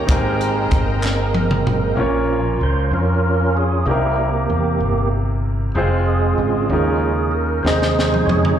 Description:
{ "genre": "slow gospel", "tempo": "63 BPM (dotted quarters)", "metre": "6/8", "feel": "straight", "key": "Ab major", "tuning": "A4 = 440 Hz", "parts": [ { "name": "clear baby grand piano", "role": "accompaniment", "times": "0.0-8.6 s", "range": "Bb2 to Eb5", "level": "-22 LUFS", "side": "left 1 dB", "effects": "slapback echo" }, { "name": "percussive tonewheel organ", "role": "sustained chords", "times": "0.0-8.6 s", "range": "C3 to Db5", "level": "-21 LUFS", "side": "right 4 dB", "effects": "fast rotary speaker, overdrive, chorus vibrato" }, { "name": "rich studio string section", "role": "sustained chords", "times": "0.0-2.0 s", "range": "C5 to Bb5", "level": "-30 LUFS", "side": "right 1 dB", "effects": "none" }, { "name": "mellow fretless electric bass", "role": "bass", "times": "0.1-8.6 s", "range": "F1 to F2", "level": "-20 LUFS", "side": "equal", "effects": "none" }, { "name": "crisp fusion drum kit", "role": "drums", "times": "0.1-1.8, 7.7-8.6 s", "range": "hi-hat, kick drum, snare drum, toms", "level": "-21 LUFS", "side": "left 1 dB", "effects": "none" }, { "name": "group handclap", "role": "percussion", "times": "1.0-1.3 s", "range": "none", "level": "-29 LUFS", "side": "right 1 dB", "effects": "none" } ], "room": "light reverb, small room ambience", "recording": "live gig heard through the venue's PA, club reverb", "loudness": "-16 LUFS", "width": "side -9 dB against mid", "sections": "0.0-2.0 A section; 2.0-8.6 B section", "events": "drum fill 1.0-2.0, 7.7-8.6; tonewheel organ solo 2.0-8.6", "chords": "0.1 Abmaj9; 2.0 Bbm; 3.9 C7; 5.8 Fm; 6.7 Eb9sus4; 7.7 Ab/Eb" }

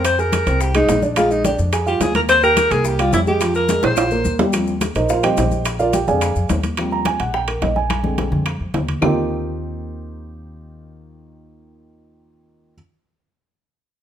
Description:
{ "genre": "Afro-Cuban jazz", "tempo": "214 BPM", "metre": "4/4", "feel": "straight", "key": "Eb major", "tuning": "A4 = 440 Hz", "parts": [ { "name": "warm alto saxophone", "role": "melody", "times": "0.0-4.4 s", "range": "Eb4 to C5", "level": "-18 LUFS", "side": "equal", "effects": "none" }, { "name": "dark baby grand piano", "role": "accompaniment", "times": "0.0-12.7 s", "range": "D3 to Bb5", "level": "-20 LUFS", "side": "right 2 dB", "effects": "none" }, { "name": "upright bass", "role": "bass", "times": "0.0-12.7 s", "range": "Bb1 to F2", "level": "-23 LUFS", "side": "equal", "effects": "none" }, { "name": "bongos", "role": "percussion", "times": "0.0-9.1 s", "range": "none", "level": "-29 LUFS", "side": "left 5 dB", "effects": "none" }, { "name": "claves", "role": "percussion", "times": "0.0-9.1 s", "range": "none", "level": "-32 LUFS", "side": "left 4 dB", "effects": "none" }, { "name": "congas", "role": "percussion", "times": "0.0-9.1 s", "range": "none", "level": "-26 LUFS", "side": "left 2 dB", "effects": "none" }, { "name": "maracas", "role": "percussion", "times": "0.0-6.8 s", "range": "none", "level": "-33 LUFS", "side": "left 7 dB", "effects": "none" }, { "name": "timbales", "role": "percussion", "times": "0.0-9.1 s", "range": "none", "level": "-25 LUFS", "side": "right 6 dB", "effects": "none" } ], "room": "light reverb", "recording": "minimal, uncompressed stereo recording", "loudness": "-16 LUFS", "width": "side -9 dB against mid", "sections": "0.0-4.5 A section; 4.5-9.0 B section; 9.0-11.3 C section", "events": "drum fill 3.7-4.5, 7.9-9.0; grand piano solo 4.5-9.0", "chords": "0.1 Fm7; 1.2 Bb7; 2.3 Eb; 2.9 C5; 3.4 Fm; 4.0 Bbsus2; 4.5 Eb69; 5.7 Bb7; 6.8 Eb69; 7.9 Bb7; 9.0 Eb69" }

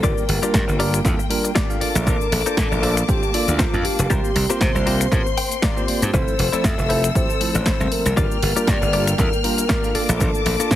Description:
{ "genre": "nu-disco, nu disco", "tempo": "118 BPM", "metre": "4/4", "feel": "swing 55% on 16ths", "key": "unclear", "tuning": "A4 = 440 Hz", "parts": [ { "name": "soft octave-layered synth lead", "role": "melody", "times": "0.0-10.8 s", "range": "F4 to E5", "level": "-25 LUFS", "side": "left 1 dB", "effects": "chorus, digital delay" }, { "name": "bell-like tine electric piano", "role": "accompaniment", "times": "0.0-10.8 s", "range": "F3 to A5", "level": "-26 LUFS", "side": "right 1 dB", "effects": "fast stereo tremolo, sidechain pumping, digital delay" }, { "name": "clear studio string section", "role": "sustained chords", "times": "0.0-10.8 s", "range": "Bb3 to F6", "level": "-28 LUFS", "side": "left 2 dB", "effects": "sidechain pumping" }, { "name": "direct-recorded clean electric guitar", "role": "riff", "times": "0.0-10.7 s", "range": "E4 to G5", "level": "-29 LUFS", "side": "left 3 dB", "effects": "lush chorus, digital delay" }, { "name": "glassy slap bass", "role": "bass", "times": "0.0-10.8 s", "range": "F1 to C3", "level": "-22 LUFS", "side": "equal", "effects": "none" }, { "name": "electronic kick drum", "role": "drums", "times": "0.0-10.8 s", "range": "none", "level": "-22 LUFS", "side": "equal", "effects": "none" }, { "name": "house drum kit", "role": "drums", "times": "0.0-10.8 s", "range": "finger snaps, hi-hat, shaker, snare drum", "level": "-25 LUFS", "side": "left 1 dB", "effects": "none" } ], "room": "light reverb, digital ambience", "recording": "heavily compressed radio sound", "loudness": "-17 LUFS", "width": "side -13 dB against mid", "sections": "0.0-10.8 A section", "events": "clean electric guitar fill 5.1-6.1", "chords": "0.0 Gm7; 1.8 Bbmaj7; 4.1 C7sus4; 6.1 Fmaj7; 8.2 Gm7; 9.9 Bbmaj7" }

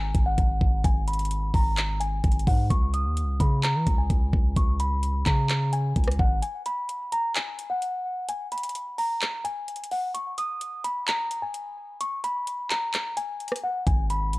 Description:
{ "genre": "hip hop, trap", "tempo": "129 BPM", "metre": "4/4", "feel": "half-time", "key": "G# minor", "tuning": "A4 = 436 Hz", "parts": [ { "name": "celesta", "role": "melody", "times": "0.0-14.4 s", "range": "F#5 to D#6", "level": "-29 LUFS", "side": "equal", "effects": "low-pass filter, analog delay" }, { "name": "long sustained 808-style bass", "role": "bass", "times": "0.0-6.4, 13.9-14.4 s", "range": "G#1 to E3", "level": "-26 LUFS", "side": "equal", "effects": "none" }, { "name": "trap drum kit", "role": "drums", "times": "0.1-14.4 s", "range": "handclaps, hi-hat, kick drum, rim click", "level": "-25 LUFS", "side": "equal", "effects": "none" } ], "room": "digital ambience", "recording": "dry, gritty hardware recording", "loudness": "-23 LUFS", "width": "side -21 dB against mid", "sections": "0.0-14.4 A section", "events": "filter sweep on celesta 0.0-6.4; break 6.4-13.9", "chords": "0.0 G#7(no3); 2.7 C#5; 6.4 N.C.; 13.9 G#m" }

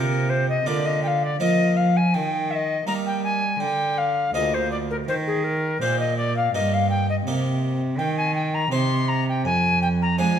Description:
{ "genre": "classical, baroque-style sonata movement with continuo", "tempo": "82 BPM", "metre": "4/4", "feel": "straight", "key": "Eb major", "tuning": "A4 = 441 Hz", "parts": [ { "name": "alto recorder", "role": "melody", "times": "0.0-10.4 s", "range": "Ab4 to C6", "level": "-23 LUFS", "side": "left 3 dB", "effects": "none" }, { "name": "harpsichord", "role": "accompaniment", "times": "0.0-10.4 s", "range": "D2 to C5", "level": "-28 LUFS", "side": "right 2 dB", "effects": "none" }, { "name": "rich cello", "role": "bass", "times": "0.0-10.4 s", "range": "D2 to G3", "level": "-24 LUFS", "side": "right 2 dB", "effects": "none" } ], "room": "moderate recital hall reverb, RT60 1.6 s", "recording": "none", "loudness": "-20 LUFS", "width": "side -8 dB against mid", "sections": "0.0-10.4 A section", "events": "none", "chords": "0.0 Bb; 2.1 Eb; 3.6 Bb7/D; 5.1 Eb; 8.0 Cm/Eb; 9.4 Dm7b5/F" }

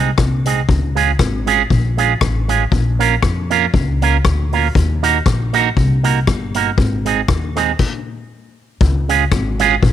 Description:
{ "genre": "ska", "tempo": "118 BPM", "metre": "4/4", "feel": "swing 55% on 8ths", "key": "Db major", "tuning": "A4 = 440 Hz", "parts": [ { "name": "electric guitar with an envelope filter", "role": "accompaniment", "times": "0.0-9.7 s", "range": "Ab3 to Bb4", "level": "-17 LUFS", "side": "right 12 dB", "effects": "none" }, { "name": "upright bass", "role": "bass", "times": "0.0-9.9 s", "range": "G1 to F2", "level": "-17 LUFS", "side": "left 1 dB", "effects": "none" }, { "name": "street-band drum kit", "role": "drums", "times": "0.2-9.9 s", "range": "crash cymbal, hi-hat, kick drum, rim click", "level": "-18 LUFS", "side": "left 3 dB", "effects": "none" } ], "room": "small room ambience", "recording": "1960s-style stereo", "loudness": "-13 LUFS", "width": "side -11 dB against mid", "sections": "0.0-8.8 A section; 8.8-9.9 B section", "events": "stop 7.8-8.8", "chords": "0.0 Ab; 0.7 Db; 2.7 Bbm; 4.8 Ebm; 6.8 Ab; 8.8 Db" }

